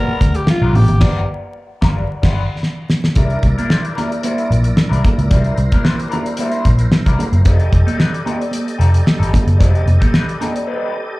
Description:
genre	funk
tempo	112 BPM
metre	4/4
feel	straight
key	unclear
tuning	A4 = 441 Hz
part	growling alto saxophone	melody	0.0-1.3 s	F4 to A#4	-21 LUFS	left 1 dB	slapback echo
part	electric guitar through a small old amp	accompaniment	0.0-11.1 s	G3 to C5	-24 LUFS	left 3 dB	wah, spring reverb, slapback echo
part	vintage muted picked electric bass	bass	0.1-10.0 s	F1 to D2	-13 LUFS	equal	none
part	damped 70s drum kit	drums	0.2-10.7 s	crash cymbal, hi-hat, kick drum, snare drum	-15 LUFS	equal	none
part	congas	percussion	0.2-10.5 s	none	-24 LUFS	right 2 dB	slapback echo
part	tonewheel organ	sustained chords	3.2-11.2 s	E4 to Eb5	-28 LUFS	right 1 dB	slow rotary speaker, overdrive, chorus vibrato
room	small room ambience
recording	live gig heard through the venue's PA, club reverb, vinyl crackle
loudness	-13 LUFS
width	side -20 dB against mid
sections	0.0-3.2 A section; 3.2-11.2 B section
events	band accent 1.0-3.2; drum fill 2.6-3.2; break 10.7-11.2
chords	0.0 G7#9; 3.2 C9; 7.5 F9

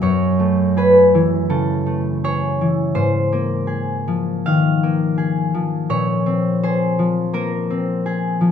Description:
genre	classical, solo harp piece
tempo	83 BPM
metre	4/4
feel	rubato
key	unclear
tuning	A4 = 441 Hz
part	concert harp	solo	0.0-8.5 s	F#2 to E#5	-16 LUFS	left 1 dB	none
room	light reverb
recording	close, detailed microphones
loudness	-16 LUFS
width	side -8 dB against mid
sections	0.0-8.5 A section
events	none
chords	0.0 F#m9; 3.0 G#69; 5.9 A#m9

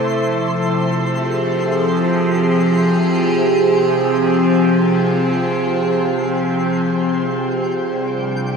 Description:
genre	ambient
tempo	free time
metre	none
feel	none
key	unclear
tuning	A4 = 439 Hz
part	evolving wavetable pad	sustained chords	0.0-8.6 s	C3 to D5	-15 LUFS	equal	phaser, built-in reverb
part	twinkling granular texture	texture	0.0-8.6 s	G5 to C6	-32 LUFS	left 1 dB	built-in reverb
part	muted felt-like synth keys	arpeggios	7.0-8.6 s	none	barely audible	none	none
room	wet shimmer reverb, RT60 8.4 s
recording	cassette tape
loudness	-15 LUFS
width	side -5 dB against mid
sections	0.0-7.0 A section; 7.0-8.6 B section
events	fade-out on synth texture 0.0-7.0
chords	0.1 Fmadd9/C; 7.0 Csus2

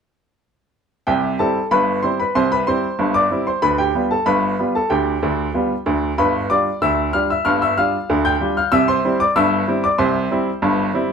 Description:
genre	ragtime piano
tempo	94 BPM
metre	2/4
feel	straight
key	C major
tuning	A4 = 441 Hz
part	bright upright piano	solo	1.1-11.1 s	G1 to G6	-16 LUFS	equal	none
room	wet small room reverb, RT60 0.6 s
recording	heard from further back in the room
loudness	-16 LUFS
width	side -6 dB against mid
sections	1.1-11.1 A section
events	none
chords	1.1 C; 3.6 G7; 8.7 C

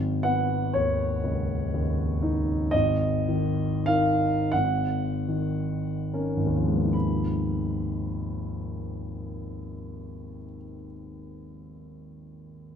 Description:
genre	classical, impressionist solo piano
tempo	22-41 BPM (dotted quarters)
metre	6/8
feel	rubato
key	G# dorian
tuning	A4 = 440 Hz
part	warm concert grand piano	solo	0.0-12.8 s	G#1 to B5	-25 LUFS	equal	none
room	moderate concert hall reverb, RT60 2.0 s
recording	minimal, uncompressed stereo recording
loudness	-24 LUFS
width	side -8 dB against mid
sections	0.0-6.9 A section; 6.9-11.4 B section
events	slowing down 0.0-6.9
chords	0.0 G#m; 2.7 G#sus2; 4.5 G#9sus4; 6.9 G#m6

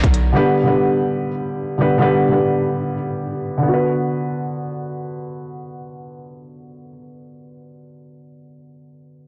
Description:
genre	hip hop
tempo	free time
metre	none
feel	none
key	unclear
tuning	A4 = 439 Hz
part	felt-muted upright piano	accompaniment	0.0-9.3 s	D3 to B4	-21 LUFS	equal	none
room	light reverb, small room ambience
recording	blown-out, overdriven recording, overdrive, low-pass filter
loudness	-19 LUFS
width	mono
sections	0.0-3.7 A section; 3.7-7.0 B section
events	filter sweep 0.0-3.7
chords	0.3 G; 3.7 Bm

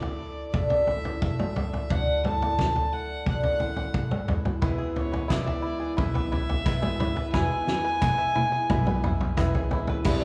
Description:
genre	indie folk with a building arrangement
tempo	88 BPM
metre	4/4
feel	straight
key	unclear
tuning	A4 = 441 Hz
part	rich fiddle	melody	0.0-9.3 s	C#5 to A5	-33 LUFS	equal	analog delay
part	picked twelve-string acoustic guitar	accompaniment	0.0-10.2 s	E2 to E4	-34 LUFS	equal	none
part	upright bass	bass	0.0-10.2 s	A1 to E2	-36 LUFS	equal	none
part	loose indie drum kit	drums	0.0-10.2 s	crash cymbal, kick drum, snare drum, toms	-29 LUFS	equal	none
part	bright upright piano	accompaniment	4.6-10.2 s	C2 to D5	-39 LUFS	equal	none
part	bluegrass banjo	arpeggios	4.6-10.2 s	E4 to E5	-37 LUFS	equal	none
part	group handclap	percussion	5.3-9.5 s	none	-46 LUFS	equal	none
part	tambourine	percussion	10.1 s	none	barely audible	none	none
room	moderate large studio reverb, RT60 1.5 s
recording	band playing live in one room, small room ambience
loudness	-26 LUFS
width	mono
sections	0.0-10.1 A section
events	drum fill 7.3-10.1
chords	0.0 Dadd9; 4.3 E

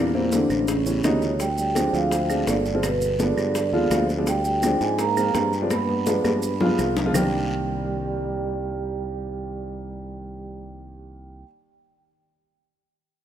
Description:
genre	Afro-Cuban jazz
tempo	167 BPM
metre	4/4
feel	straight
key	C minor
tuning	A4 = 440 Hz
part	vibraphone with soft mallets	melody	0.0-11.4 s	Bb3 to B5	-27 LUFS	right 1 dB	none
part	breathy trombone	second line	0.0-10.8 s	Bb2 to B3	-30 LUFS	right 4 dB	none
part	warm baby grand piano	accompaniment	0.0-11.5 s	Eb3 to F4	-26 LUFS	equal	none
part	modern bright fingered electric bass	bass	0.0-11.4 s	G1 to Ab2	-28 LUFS	right 1 dB	none
part	bongos	percussion	0.1-7.2 s	none	-31 LUFS	left 4 dB	none
part	congas	percussion	0.1-7.2 s	none	-30 LUFS	left 1 dB	none
part	guiro	percussion	0.3-7.2 s	none	-41 LUFS	left 2 dB	none
part	maracas	percussion	0.3-7.2 s	none	-38 LUFS	right 5 dB	none
part	claves	percussion	0.5-7.2 s	none	-40 LUFS	right 2 dB	none
room	moderate lush hall reverb, RT60 2.6 s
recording	rough home demo mix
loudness	-20 LUFS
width	side -10 dB against mid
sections	0.0-1.4 A section; 1.4-7.2 B section; 7.2-10.0 C section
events	drum fill 5.7-7.2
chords	0.0 Em7b5; 0.7 A7; 1.4 Dm7b5; 2.8 G7b9; 4.3 Dm7b5; 5.7 G7b9; 7.2 Cm7

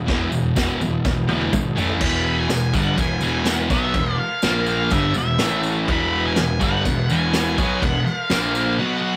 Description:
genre	garage rock duo or trio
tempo	124 BPM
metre	4/4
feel	straight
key	unclear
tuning	A4 = 440 Hz
part	thick fuzz guitar	riff	0.0-9.2 s	E2 to B3	-24 LUFS	equal	distortion
part	fuzz picked electric bass	bass	0.0-8.8 s	E1 to B1	-28 LUFS	equal	overdrive
part	vintage drum kit	drums	0.1-8.4 s	crash cymbal, kick drum, snare drum, toms	-26 LUFS	equal	none
part	tambourine	percussion	0.1-8.7 s	none	-40 LUFS	equal	none
part	octave-fuzz lead guitar	melody	2.0-9.2 s	E5 to B5	-28 LUFS	equal	distortion
room	light reverb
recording	rough rehearsal-room recording, tube saturation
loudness	-20 LUFS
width	mono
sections	0.0-2.0 A section; 2.0-9.2 B section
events	drum fill 1.0-2.0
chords	0.0 E5; 1.8 A5; 2.0 E5; 4.4 A#5; 4.9 E5; 5.4 A5; 5.9 E; 8.3 A#5

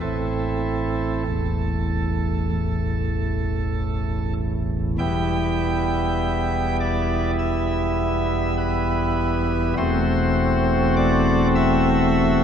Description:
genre	classical, chorale-style piece for pipe organ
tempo	47-51 BPM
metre	4/4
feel	straight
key	A minor, E minor from 5.0 s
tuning	A4 = 441 Hz
part	pipe organ, cornet	solo	0.0-12.4 s	E1 to G5	-19 LUFS	equal	none
room	wet church reverb, RT60 2.9 s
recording	dark, warm production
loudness	-20 LUFS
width	side -8 dB against mid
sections	0.0-5.0 A section; 5.0-12.4 B section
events	none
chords	0.0 Am; 5.0 Em; 9.8 F#m7b5/E

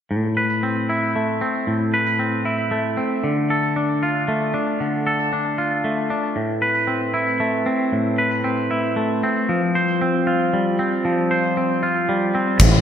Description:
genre	post-rock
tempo	115 BPM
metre	3/4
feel	straight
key	A minor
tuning	A4 = 440 Hz
part	twangy electric guitar	arpeggios	0.1-12.8 s	A2 to C5	-19 LUFS	equal	slapback echo
part	glass harmonica	sustained chords	6.4-12.8 s	G3 to B5	-26 LUFS	equal	none
part	fuzz fingered electric bass	bass	12.6-12.8 s	A1	-16 LUFS	equal	overdrive
part	huge arena drum kit	drums	12.6-12.7 s	crash cymbal, kick drum	-12 LUFS	equal	none
room	wet lush hall reverb, RT60 1.7 s, small room ambience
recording	big arena sound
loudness	-18 LUFS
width	side -9 dB against mid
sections	0.1-12.6 A section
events	none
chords	0.1 Amadd9; 3.2 Dm; 6.4 Amadd9; 9.5 Fsus2

